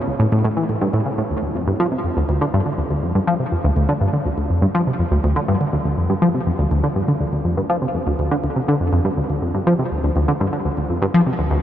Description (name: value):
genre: ambient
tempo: 122 BPM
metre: 4/4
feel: straight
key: D minor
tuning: A4 = 440 Hz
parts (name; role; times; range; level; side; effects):
- tight sequenced synth; solo; 0.1-11.6 s; C#2 to F3; -17 LUFS; equal; chorus, tape echo
room: wet huge ambient reverb, RT60 7.2 s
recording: dreamy mix soaked in reverb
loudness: -17 LUFS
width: side -11 dB against mid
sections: 0.0-1.3 A section; 1.3-11.6 B section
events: none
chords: none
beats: 0.32 0.81 | 1.30 1.80 2.29 2.78 | 3.27 3.76 4.26 4.75 | 5.24 5.73 6.22 6.71 | 7.21 7.70 8.19 8.68 | 9.17 9.67 10.16 10.65 | 11.14